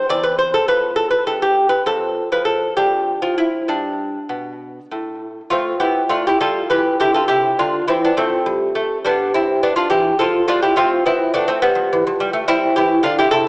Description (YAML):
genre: classical, baroque-style dance for lute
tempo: 64-71 BPM (dotted quarters)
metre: 6/8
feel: rubato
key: C major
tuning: A4 = 440 Hz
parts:
  - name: lute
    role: solo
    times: 0.0-13.5 s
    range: E2 to D5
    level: -15 LUFS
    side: equal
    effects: analog delay
room: wet recital hall reverb, RT60 1.5 s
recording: small speaker sound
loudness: -15 LUFS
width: side -26 dB against mid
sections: 0.0-5.5 A section; 5.5-13.5 B section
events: none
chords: 0.1 C/E; 1.8 F; 2.7 Dm/F; 3.7 G; 5.5 Am11; 6.4 G5; 7.3 C; 8.2 Fadd9; 9.1 G; 9.9 Fmaj13/E; 10.8 Amadd9; 11.6 G7; 12.5 C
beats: | 0.11 0.97 | 1.85 2.74 | 3.66 4.59 | 5.52 6.41 | 7.29 8.18 | 9.06 9.93 | 10.79 11.64 | 12.49 13.34